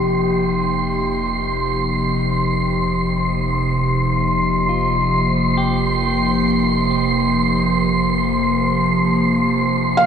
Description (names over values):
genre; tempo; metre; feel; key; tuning
ambient; free time; none; none; unclear; A4 = 440 Hz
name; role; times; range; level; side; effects
warbly tape-like pad; sustained chords; 0.0-10.1 s; C3 to G4; -18 LUFS; equal; chorus, built-in reverb
semi-hollow electric guitar; arpeggios; 0.0-9.0 s; Bb3 to G4; -33 LUFS; equal; ping-pong delay
warm sub bass; bass; 0.0-10.1 s; F1; -29 LUFS; right 1 dB; tube saturation
wind-like tuned noise texture; texture; 0.0-10.1 s; C6; -21 LUFS; right 1 dB; built-in reverb
felt-muted upright piano; melody; 10.0-10.1 s; F5; -11 LUFS; right 2 dB; none
room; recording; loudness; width
wet shimmer reverb, RT60 6.8 s; none; -16 LUFS; side -7 dB against mid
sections
0.0-10.1 A section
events
fade-in on clean electric guitar 0.0-10.1; fade-in on sub bass 0.0-10.1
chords
0.0 Cm7/F